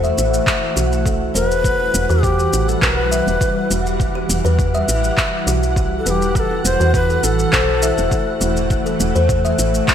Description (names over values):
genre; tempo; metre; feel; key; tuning
organic downtempo; 102 BPM; 4/4; straight; E minor; A4 = 440 Hz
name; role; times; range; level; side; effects
granular cloud pad; sustained chords; 0.0-9.9 s; E3 to F#5; -22 LUFS; equal; built-in reverb, analog chorus, sidechain pumping
kalimba; arpeggios; 0.0-9.9 s; E4 to E5; -22 LUFS; left 2 dB; digital delay
woody FM bass; bass; 0.0-9.8 s; E1 to E2; -20 LUFS; equal; sidechain pumping
electronic shaker and handclaps; drums; 0.0-9.9 s; none; -22 LUFS; equal; gated reverb
electronic kick drum; drums; 0.5-9.9 s; none; -21 LUFS; equal; none
breathy bright low Native American-style wooden flute; melody; 1.3-8.4 s; G4 to C5; -22 LUFS; left 1 dB; ping-pong delay
room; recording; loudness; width
moderate lush hall reverb, RT60 1.6 s; bright 1980s-style digital production; -15 LUFS; side -9 dB against mid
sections
0.0-9.9 A section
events
none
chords
0.0 F#m7; 1.6 Emadd9; 6.4 F#m7/E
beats
0.47 1.06 | 1.65 2.23 2.82 3.41 | 4.00 4.59 5.18 5.76 | 6.35 6.94 7.53 8.12 | 8.71 9.29 9.88